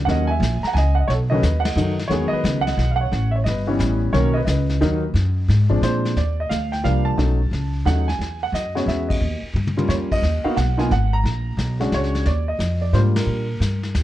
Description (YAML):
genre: jazz piano trio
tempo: 177 BPM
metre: 3/4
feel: swing 65% on 8ths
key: B major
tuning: A4 = 440 Hz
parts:
  - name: upright bass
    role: bass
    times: 0.0-14.0 s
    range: G1 to A#2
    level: -20 LUFS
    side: equal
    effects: none
  - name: warm baby grand piano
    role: melody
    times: 0.1-13.9 s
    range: D#3 to A#5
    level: -22 LUFS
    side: equal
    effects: none
  - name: vintage brush drum kit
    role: drums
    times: 0.1-14.0 s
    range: brushed snare drum, crash cymbal, hi-hat, kick drum, ride cymbal, snare drum, toms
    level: -28 LUFS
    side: left 2 dB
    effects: none
room: little or no reverb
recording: dark, warm production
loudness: -18 LUFS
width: side -14 dB against mid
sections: 0.0-6.2 A section; 6.2-14.0 B section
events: band accent 1.6, 9.0, 13.1; drum fill 9.6-9.9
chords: 0.1 D#m7; 1.1 B7; 2.1 Emaj7; 3.1 A9; 4.1 Bmaj7; 5.2 G#7(no3)/F#; 5.8 A#9; 6.2 Ebmaj9; 7.2 B9; 8.2 E69; 9.2 Eb7; 10.2 Abm9; 11.2 Bb7alt; 12.3 Ebmaj9